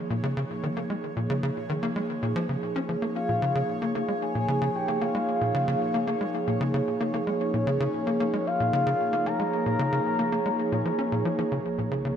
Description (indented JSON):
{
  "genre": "ambient, sequencer-driven space music",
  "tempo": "113 BPM",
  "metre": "4/4",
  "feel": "straight",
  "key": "Bb minor",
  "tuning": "A4 = 439 Hz",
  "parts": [
    { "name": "sweeping resonant pad", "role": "sustained chords", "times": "0.0-12.2 s", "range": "F3 to Db5", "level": "-28 LUFS", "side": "right 2 dB", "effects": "chorus" },
    { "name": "bubbling stepped-filter texture", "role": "texture", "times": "0.0-11.7 s", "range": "Db5", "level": "-43 LUFS", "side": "equal", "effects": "chorus, built-in reverb" },
    { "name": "tight sequencer bass", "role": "riff", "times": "0.1-12.1 s", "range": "Bb2 to Db4", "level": "-29 LUFS", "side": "left 1 dB", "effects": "lush chorus, ping-pong delay" },
    { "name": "soft octave-layered synth lead", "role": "melody", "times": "3.2-11.1 s", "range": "Db5 to Bb5", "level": "-29 LUFS", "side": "left 3 dB", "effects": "chorus, tremolo, cassette tape, ping-pong delay" },
    { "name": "warm sub bass", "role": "bass", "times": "11.7-12.2 s", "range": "Bb1", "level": "-54 LUFS", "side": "equal", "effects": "none" }
  ],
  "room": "moderate plate reverb, RT60 3.5 s",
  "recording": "dreamy mix soaked in reverb",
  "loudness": "-24 LUFS",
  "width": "side -8 dB against mid",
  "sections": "0.0-11.7 A section",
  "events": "fade-in on synth texture 0.0-11.7",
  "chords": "0.0 Bbm7"
}